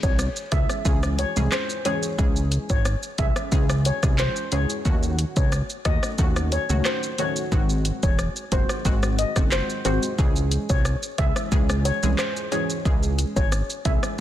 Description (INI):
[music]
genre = dancehall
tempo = 90 BPM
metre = 4/4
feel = straight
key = C# harmonic minor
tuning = A4 = 440 Hz
[part]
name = steel pan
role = melody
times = 0.0-14.0 s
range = B#4 to E5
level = -29 LUFS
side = left 2 dB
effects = tape echo
[part]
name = punchy chord stab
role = accompaniment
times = 0.0-14.2 s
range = D#3 to G#4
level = -29 LUFS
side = equal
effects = chorus, sidechain pumping
[part]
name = fat analog bass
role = bass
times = 0.0-14.0 s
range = E1 to D#2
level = -24 LUFS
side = equal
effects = none
[part]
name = deep house drum kit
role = drums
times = 0.0-14.2 s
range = handclaps, hi-hat, kick drum, rim click, shaker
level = -24 LUFS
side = equal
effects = none
[sound]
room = little or no reverb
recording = dense, heavily limited modern master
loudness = -20 LUFS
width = side -12 dB against mid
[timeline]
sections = 0.0-14.2 A section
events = none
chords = 0.0 C#m; 4.9 D#m7b5; 7.5 G#7; 10.2 C#m